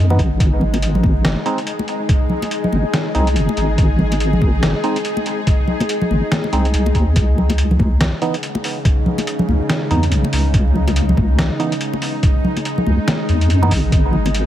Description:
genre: deep dubstep.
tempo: 142 BPM.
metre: 4/4.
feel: swing 59% on 16ths, half-time.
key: unclear.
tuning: A4 = 441 Hz.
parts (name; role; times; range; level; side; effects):
bowed-like drone; sustained chords; 0.0-14.5 s; C#3 to G#4; -22 LUFS; left 1 dB; built-in reverb.
deep soft wobble bass; bass; 0.0-14.5 s; F#1 to F#2; -16 LUFS; equal; chorus.
percussive organ stab; stabs; 0.1-13.7 s; E3 to D#4; -26 LUFS; right 3 dB; chorus, cassette tape, dub echo.
congas; percussion; 0.1-14.3 s; none; -22 LUFS; left 1 dB; none.
electronic kick drum; drums; 0.2-14.0 s; none; -16 LUFS; equal; overdrive.
trip hop sampler-style drum kit; drums; 0.2-14.4 s; hi-hat, snare drum; -23 LUFS; equal; overdrive.
room: light reverb.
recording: vinyl crackle.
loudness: -14 LUFS.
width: side -12 dB against mid.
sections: 0.0-14.5 A section.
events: none.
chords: 0.4 G#; 7.2 C#m7; 13.9 G#5.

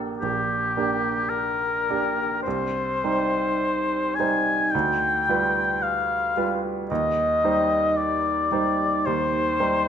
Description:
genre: classical, romantic duo for oboe and grand piano.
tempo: 51-58 BPM.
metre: 4/4.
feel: rubato.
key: G minor.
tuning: A4 = 440 Hz.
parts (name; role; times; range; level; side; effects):
bright baby grand piano; accompaniment; 0.0-9.9 s; Bb1 to C5; -26 LUFS; right 4 dB; none.
warm oboe; melody; 0.2-9.9 s; G4 to Ab5; -23 LUFS; left 3 dB; none.
room: wet recital hall reverb, RT60 1.3 s.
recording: none.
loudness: -21 LUFS.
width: side -8 dB against mid.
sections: 0.0-9.9 A section.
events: none.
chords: 0.0 Gm/Bb; 2.5 Cm; 4.7 G7/D; 6.9 Cm/Eb.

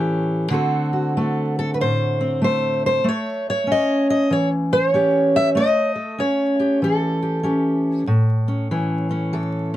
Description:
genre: acoustic country blues, solo or duo.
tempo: 96 BPM.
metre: 4/4.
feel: swing 64% on 8ths.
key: A mixolydian.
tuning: A4 = 442 Hz.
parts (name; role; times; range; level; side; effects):
fingerpicked steel-string acoustic guitar; solo; 0.0-9.8 s; A2 to E5; -18 LUFS; equal; none.
room: light reverb.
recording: vinyl crackle.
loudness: -18 LUFS.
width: side -14 dB against mid.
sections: 0.0-9.8 A section.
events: none.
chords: 0.0 A7; 0.5 D7; 3.0 A7.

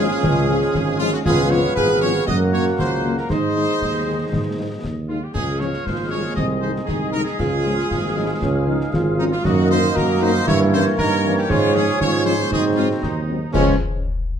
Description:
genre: military-style march for wind band.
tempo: 117 BPM.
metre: 2/4.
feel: straight.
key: Db major.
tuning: A4 = 440 Hz.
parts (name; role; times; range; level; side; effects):
bright trumpet section; melody; 0.0-13.7 s; Db4 to Eb5; -25 LUFS; equal; none.
warm euphonium; second line; 0.0-13.3 s; C4 to Ab4; -25 LUFS; right 5 dB; none.
warm woodwind section; second line; 0.0-13.8 s; F4 to Gb5; -27 LUFS; left 3 dB; none.
dark French horn section; accompaniment; 0.0-13.8 s; Eb3 to Eb4; -26 LUFS; left 6 dB; none.
clear trombone section; sustained chords; 0.0-13.7 s; Eb3 to Db4; -27 LUFS; right 2 dB; none.
mellow tuba; bass; 0.0-13.8 s; Ab1 to Ab2; -22 LUFS; right 2 dB; none.
concert snare drum, concert bass drum and clash cymbals; drums; 0.2-13.8 s; none; -26 LUFS; left 2 dB; none.
room: moderate large studio reverb, RT60 1.0 s.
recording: dark, warm production.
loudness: -17 LUFS.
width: side -8 dB against mid.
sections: 0.0-13.5 A section.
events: none.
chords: 0.0 Db; 1.3 Db7; 2.3 Gb; 3.3 Ab; 5.3 Db; 6.4 Ab/C; 7.4 Db; 9.4 Ebm/Gb; 10.5 Gdim7; 11.5 Db/Ab; 12.5 Ab7; 13.5 Db.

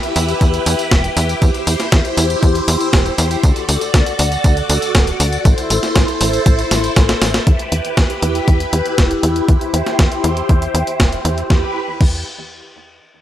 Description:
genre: italo disco.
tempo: 119 BPM.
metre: 4/4.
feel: straight.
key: E minor.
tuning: A4 = 440 Hz.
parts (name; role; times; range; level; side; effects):
phased string machine; sustained chords; 0.0-11.7 s; E4 to D5; -19 LUFS; left 1 dB; ensemble chorus, phaser.
clean 12-bit digital drum machine; drums; 0.0-12.1 s; crash cymbal, hi-hat, snare drum, tambourine; -20 LUFS; equal; none.
tight sequencer bass; bass; 0.2-12.2 s; D1 to E2; -19 LUFS; equal; tube saturation, analog delay.
electronic kick drum; drums; 0.4-12.1 s; none; -13 LUFS; equal; none.
room: digital ambience.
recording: dry, gritty hardware recording.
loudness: -13 LUFS.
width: side -12 dB against mid.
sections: 0.0-7.5 A section; 7.5-11.5 B section; 11.5-13.2 C section.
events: drum fill 6.7-7.5; filter sweep on string machine 7.5-11.5.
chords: 0.0 Em; 1.4 C/E; 3.4 D; 5.5 Am; 7.5 Em; 9.5 C/E; 11.5 Em.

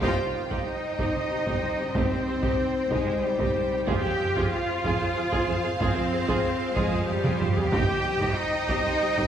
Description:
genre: cinematic, epic orchestral film score.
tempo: 94 BPM.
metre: 3/4.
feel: straight.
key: unclear.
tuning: A4 = 440 Hz.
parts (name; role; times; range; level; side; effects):
rich symphonic violin section; melody; 0.0-9.3 s; G4 to G5; -33 LUFS; left 2 dB; none.
rich studio violin section; second line; 0.0-9.3 s; C5 to G5; -36 LUFS; left 1 dB; none.
rich symphonic viola section; accompaniment; 0.0-9.3 s; Eb4 to C5; -33 LUFS; equal; none.
dark French horn section; sustained chords; 0.0-9.3 s; Eb4 to C5; -32 LUFS; left 2 dB; none.
rich symphonic cello section; bass; 0.0-9.3 s; G3 to G4; -29 LUFS; right 1 dB; none.
rich symphonic double bass section; bass; 0.0-9.2 s; C2 to F2; -33 LUFS; right 3 dB; none.
taiko ensemble; drums; 0.0-9.3 s; none; -30 LUFS; right 1 dB; none.
room: wet concert hall reverb, RT60 2.4 s.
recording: heard from further back in the room.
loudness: -23 LUFS.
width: side -9 dB against mid.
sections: 0.0-9.3 A section.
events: band accent 0.0-0.7; drum fill 7.2-7.7.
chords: 0.0 Cm; 3.9 Fm; 7.7 Cm.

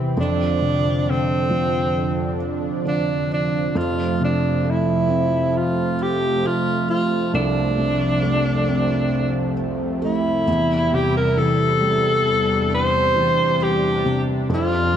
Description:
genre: pop ballad.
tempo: 67 BPM.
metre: 4/4.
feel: straight.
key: F major.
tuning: A4 = 439 Hz.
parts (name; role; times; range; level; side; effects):
felt-muted upright piano; accompaniment; 0.0-15.0 s; C2 to C4; -22 LUFS; equal; none.
lush unison pad; sustained chords; 0.0-15.0 s; E2 to G4; -24 LUFS; right 1 dB; chorus.
warm alto saxophone; melody; 0.2-15.0 s; C4 to C5; -21 LUFS; equal; tape echo.
room: wet recital hall reverb, RT60 1.3 s, studio ambience.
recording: dark, warm production, nothing above 10.9 kHz.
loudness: -18 LUFS.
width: side -9 dB against mid.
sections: 0.0-15.0 A section.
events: none.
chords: 0.2 Dm7/F; 3.8 F; 10.5 C/E.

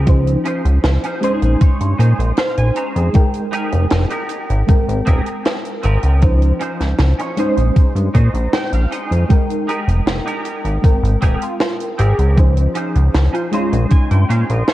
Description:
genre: vaporwave.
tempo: 78 BPM.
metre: 4/4.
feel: straight.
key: unclear.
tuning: A4 = 435 Hz.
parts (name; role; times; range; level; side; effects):
warm velvety synth lead; melody; 0.0-3.2, 11.4-13.7 s; F4 to C5; -26 LUFS; equal; chorus, cassette tape, tape echo.
mellow FM electric piano; accompaniment; 0.0-14.7 s; F3 to C6; -22 LUFS; equal; tremolo, ensemble chorus, vintage 12-bit sampler grit, diffuse ambient delay.
clean electric guitar; riff; 0.0-14.7 s; C4 to Bb5; -26 LUFS; right 2 dB; ensemble chorus, diffuse ambient delay.
chorused synth bass; bass; 0.0-14.6 s; Eb1 to Bb2; -14 LUFS; equal; none.
electronic kick drum; drums; 0.1-14.1 s; none; -12 LUFS; equal; none.
tight funk drum kit; drums; 0.1-14.7 s; hi-hat, snare drum; -23 LUFS; right 1 dB; none.
room: light reverb, small room ambience.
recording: cassette tape.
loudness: -14 LUFS.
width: side -15 dB against mid.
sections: 0.0-14.7 A section.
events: clean electric guitar fill 0.8-3.1, 7.8-9.3, 13.1-14.7.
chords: 0.1 Dbmaj9; 1.2 Bbm11; 3.1 Fm11; 4.7 Abmaj9; 6.2 Dbmaj9; 7.4 Bbm11; 9.3 Fm11; 10.8 Abmaj9; 12.4 Dbmaj9; 13.5 Bbm11.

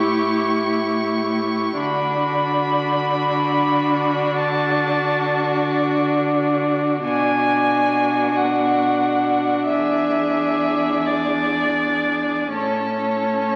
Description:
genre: classical, slow romantic movement for string quartet.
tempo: 38-46 BPM (dotted quarters).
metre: 12/8.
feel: rubato.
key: unclear.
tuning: A4 = 440 Hz.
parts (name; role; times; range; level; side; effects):
rich violin; melody; 0.0-13.6 s; C#5 to C#6; -24 LUFS; equal; none.
rich violin; second line; 0.0-13.6 s; F#4 to A4; -29 LUFS; equal; none.
rich viola; accompaniment; 0.0-13.6 s; C#4 to E4; -24 LUFS; equal; none.
rich cello; bass; 0.0-13.6 s; E2 to D3; -28 LUFS; equal; none.
room: wet scoring stage reverb, RT60 2.0 s.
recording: very old 78 rpm record, vinyl crackle.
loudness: -20 LUFS.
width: mono.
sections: 0.0-13.6 A section.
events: none.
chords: 0.0 A7; 1.8 D; 7.0 Bm; 9.7 E7; 12.5 A.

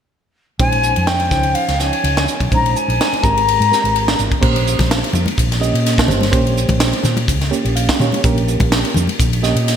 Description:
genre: electric jazz fusion.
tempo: 126 BPM.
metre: 4/4.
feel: swing 53% on 16ths.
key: Bb dorian.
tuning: A4 = 443 Hz.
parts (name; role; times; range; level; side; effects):
mellow jazz flute; melody; 0.6-4.2 s; F5 to Bb5; -17 LUFS; left 4 dB; ping-pong delay.
reed electric piano; accompaniment; 0.6-9.8 s; F3 to F5; -21 LUFS; right 4 dB; fast tremolo.
woody fretless electric bass; bass; 0.6-9.8 s; G1 to Bb2; -18 LUFS; equal; wide subtle chorus.
crisp fusion drum kit; drums; 0.6-9.8 s; crash cymbal, hi-hat, kick drum, ride cymbal, snare drum; -18 LUFS; equal; gated reverb.
congas; percussion; 4.8-9.2 s; none; -24 LUFS; left 2 dB; none.
room: moderate lush hall reverb, RT60 1.9 s, small room ambience.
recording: bright 1980s-style digital production.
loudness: -13 LUFS.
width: side -8 dB against mid.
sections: 0.6-4.4 A section; 4.4-9.8 B section.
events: reed electric piano fill 7.3-8.2.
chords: 0.6 Bbm11; 1.3 Dbmaj9; 2.5 Bbm11; 3.2 Abmaj9; 4.4 Bbm69.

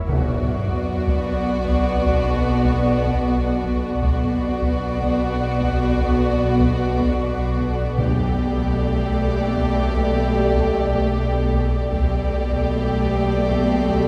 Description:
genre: cinematic, suspense film score.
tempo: 76 BPM.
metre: 5/4.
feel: straight.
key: B minor.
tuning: A4 = 440 Hz.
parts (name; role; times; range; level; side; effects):
ethereal airy pad; sustained chords; 0.0-14.1 s; A4 to G5; -35 LUFS; equal; none.
swarming drone; drone; 0.0-14.1 s; B1; -32 LUFS; equal; none.
warm studio violin section; melody; 0.1-14.1 s; D5; -31 LUFS; equal; none.
warm symphonic violin section; second line; 0.1-14.1 s; F#4 to G4; -31 LUFS; equal; none.
dark symphonic viola section; accompaniment; 0.1-14.1 s; A3 to B3; -29 LUFS; equal; none.
dark trombone section; sustained chords; 0.1-14.1 s; B2 to B3; -32 LUFS; equal; none.
mellow French horn section; sustained chords; 0.1-14.1 s; D4 to G4; -33 LUFS; equal; none.
rich symphonic double bass section; bass; 0.1-14.1 s; B1; -28 LUFS; equal; none.
warm symphonic cello section; bass; 0.1-14.1 s; B2; -30 LUFS; equal; none.
taiko ensemble; drums; 0.1-14.1 s; none; -29 LUFS; equal; none.
timpani; percussion; 0.1-1.2, 8.0-9.1 s; B2; -31 LUFS; equal; none.
sub drop; sound effects; 0.1-4.0 s; none; -32 LUFS; equal; none.
room: wet scoring stage reverb, RT60 1.8 s.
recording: none.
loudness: -20 LUFS.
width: mono.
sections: 0.1-14.1 A section.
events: impact 0.1-4.0.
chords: 0.1 Bm; 8.0 Gadd9/B.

